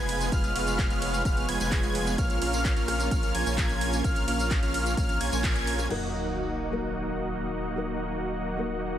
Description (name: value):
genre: EDM, festival progressive house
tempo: 129 BPM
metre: 4/4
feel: straight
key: Eb minor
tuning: A4 = 440 Hz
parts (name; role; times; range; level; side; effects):
- lush unison pad; sustained chords; 0.0-9.0 s; Db3 to Db5; -35 LUFS; equal; chorus, sidechain pumping
- wide unison lead; arpeggios; 0.0-5.9 s; F6 to Ab6; -32 LUFS; left 1 dB; sidechain pumping, dub echo
- dense compressed supersaw; riff; 0.0-9.0 s; Ab3 to Ab5; -31 LUFS; right 1 dB; sidechain pumping, low-pass filter, dub echo
- saturated sub bass; bass; 0.0-9.0 s; Eb1 to Bb1; -33 LUFS; equal; sidechain pumping
- house drum kit; drums; 0.1-6.0 s; crash cymbal, handclaps, hi-hat, ride cymbal, rim click, tambourine; -34 LUFS; right 1 dB; none
- electronic kick drum; drums; 0.3-5.5 s; none; -27 LUFS; equal; none
- felt-muted upright piano; accompaniment; 5.9-9.0 s; Gb3 to Bb4; -34 LUFS; left 3 dB; sidechain pumping, dub echo
- sub drop; sound effects; 5.9-7.8 s; none; -40 LUFS; equal; none
room: light reverb, digital ambience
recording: none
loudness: -25 LUFS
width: side -11 dB against mid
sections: 0.0-5.9 A section; 5.9-9.0 B section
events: drop 0.0-5.9; band accent 5.4; impact 5.9-7.8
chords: 0.0 Fdim; 2.2 Bbm; 5.9 Ebm